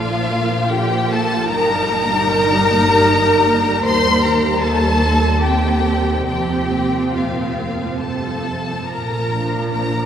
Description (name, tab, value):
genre	classical, slow romantic movement for string orchestra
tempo	68-78 BPM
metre	3/4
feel	rubato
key	unclear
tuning	A4 = 435 Hz
part	warm studio violin section	melody	0.0-10.1 s	F5 to C6	-20 LUFS	left 3 dB	none
part	warm studio violin section	second line	0.0-10.1 s	F4 to C5	-21 LUFS	equal	none
part	warm studio viola section	accompaniment	0.0-10.1 s	C3 to F4	-21 LUFS	right 1 dB	none
part	dark studio cello section	bass	0.0-10.1 s	Eb2 to Bb2	-26 LUFS	right 2 dB	none
part	dark studio double bass section	bass	0.0-10.1 s	F1 to Eb2	-23 LUFS	right 1 dB	none
room	wet cathedral reverb, RT60 5.4 s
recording	recorded in a church or concert hall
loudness	-15 LUFS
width	side -9 dB against mid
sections	0.0-10.1 A section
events	none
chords	0.0 Bb; 1.5 Eb/G; 3.8 Eb; 5.4 Cm/Eb; 6.3 Fsus4; 8.0 F; 8.9 Bb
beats	0.71 | 1.50 2.28 3.06 | 3.84 4.62 5.42 | 6.27 7.13 8.01 | 8.88 9.71